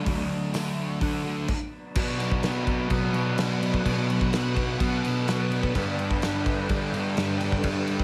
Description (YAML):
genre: rock, shoegaze and dream pop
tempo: 127 BPM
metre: 4/4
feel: straight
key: unclear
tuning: A4 = 440 Hz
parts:
  - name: phased string machine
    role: sustained chords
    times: 0.0-8.0 s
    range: D4 to G5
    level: -38 LUFS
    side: equal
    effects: ensemble chorus, phaser
  - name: overdriven electric guitar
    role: riff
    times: 0.0-8.0 s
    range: G2 to D4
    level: -35 LUFS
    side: equal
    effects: reverse reverb
  - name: thick fuzz guitar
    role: riff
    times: 0.0-8.0 s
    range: G2 to D4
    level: -32 LUFS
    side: equal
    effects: distortion, analog chorus
  - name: fuzz picked electric bass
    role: bass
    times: 0.0-8.0 s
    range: D2 to D3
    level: -32 LUFS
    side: equal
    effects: overdrive
  - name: loose indie drum kit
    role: drums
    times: 0.1-8.0 s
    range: crash cymbal, hi-hat, kick drum, snare drum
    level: -32 LUFS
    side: equal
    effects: none
  - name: tambourine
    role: percussion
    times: 0.5-0.6 s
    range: none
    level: -46 LUFS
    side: equal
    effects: none
room: moderate recital hall reverb, RT60 1.5 s, studio reverb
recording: none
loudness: -26 LUFS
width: mono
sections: 0.0-2.0 A section; 2.0-8.0 B section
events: stop 1.5-2.0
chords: 0.0 D; 2.0 Bm7; 5.7 Gadd9